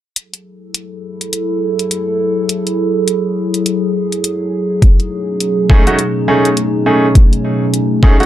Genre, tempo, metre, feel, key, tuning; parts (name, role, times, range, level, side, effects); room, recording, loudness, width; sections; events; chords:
glitch hop; 103 BPM; 4/4; swing 60% on 16ths; F# dorian; A4 = 440 Hz
dark analog pad; sustained chords; 0.9-8.3 s; B2 to A4; -16 LUFS; equal; chorus, phaser, vintage 12-bit sampler grit, sidechain pumping
electronic hi-hat; drums; 0.2-8.3 s; -20 LUFS; left 1 dB; overdrive
electronic kick drum; drums; 4.8-8.2 s; -8 LUFS; equal; overdrive
clear baby grand piano; stabs; 5.7-8.3 s; A3 to G#4; -14 LUFS; right 1 dB; sidechain pumping, digital delay
wet small room reverb, RT60 0.5 s; dark, warm production; -12 LUFS; side -12 dB against mid
0.2-8.3 A section
0.2 F#m9; 4.8 B13